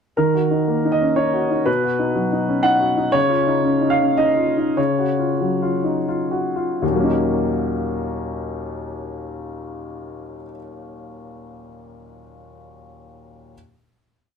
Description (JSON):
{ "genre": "neoclassical minimalist piano", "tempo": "80-124 BPM", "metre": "3/4", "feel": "rubato", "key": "Eb minor", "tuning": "A4 = 440 Hz", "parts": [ { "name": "warm upright piano", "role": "solo", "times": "0.2-13.6 s", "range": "Eb2 to F#5", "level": "-18 LUFS", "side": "equal", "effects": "none" } ], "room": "light reverb", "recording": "close, detailed microphones", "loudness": "-17 LUFS", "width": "side -6 dB against mid", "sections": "0.2-6.8 A section; 6.8-11.3 final chord", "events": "slowing down 2.4-6.8", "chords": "0.2 Ebm7; 1.7 B; 3.1 Dbadd9; 4.8 Gb5/Db; 6.8 Ebm7", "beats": "| 0.18 0.68 1.18 | 1.67 2.17 2.65 | 3.14 3.65 4.19 | 4.77 5.41 6.08 | 6.82 7.57 8.32 | 9.06 9.81 10.56" }